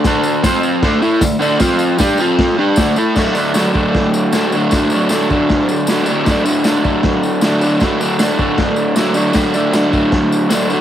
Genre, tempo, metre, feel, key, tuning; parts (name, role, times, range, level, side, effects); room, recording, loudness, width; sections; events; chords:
garage rock duo or trio; 155 BPM; 4/4; straight; D mixolydian; A4 = 443 Hz
crunchy overdriven guitar; riff; 0.0-10.8 s; D3 to A4; -13 LUFS; equal
crunchy breakbeat drum kit; drums; 0.0-10.6 s; crash cymbal, kick drum, snare drum; -19 LUFS; equal; cassette tape
tambourine; percussion; 0.1-10.8 s; -29 LUFS; left 3 dB
small room ambience; home recording on cassette; -12 LUFS; side -10 dB against mid
0.0-3.2 A section; 3.2-10.8 B section
0.4 F5; 0.8 D5; 1.6 F5; 2.0 G5; 2.2 F5; 2.6 D5; 3.2 D